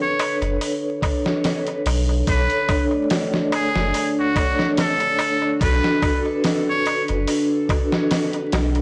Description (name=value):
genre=trip hop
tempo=72 BPM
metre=4/4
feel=swing 54% on 16ths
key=B minor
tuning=A4 = 440 Hz
part: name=trumpet with straight mute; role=melody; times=0.0-7.1 s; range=F#4 to C#5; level=-26 LUFS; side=equal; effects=tape echo
part: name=vibraphone with medium hard mallets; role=accompaniment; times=0.0-8.8 s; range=A3 to D5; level=-26 LUFS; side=equal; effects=tremolo, tape echo
part: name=dark analog pad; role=sustained chords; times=0.0-8.8 s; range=D4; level=-29 LUFS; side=equal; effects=chorus
part: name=dusty soul sampler-style drum kit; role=drums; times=0.2-8.8 s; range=hi-hat, kick drum, snare drum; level=-26 LUFS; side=equal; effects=none
part: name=darbuka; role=percussion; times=0.2-8.8 s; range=none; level=-32 LUFS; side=equal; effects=none
part: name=soft dub sub bass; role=bass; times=0.4-8.8 s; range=F#1 to B1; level=-24 LUFS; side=equal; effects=tube saturation
room=moderate plate reverb, RT60 2.1 s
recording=blown-out, overdriven recording, vinyl crackle, overdrive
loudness=-21 LUFS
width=mono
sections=0.0-8.8 A section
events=none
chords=0.0 Bm7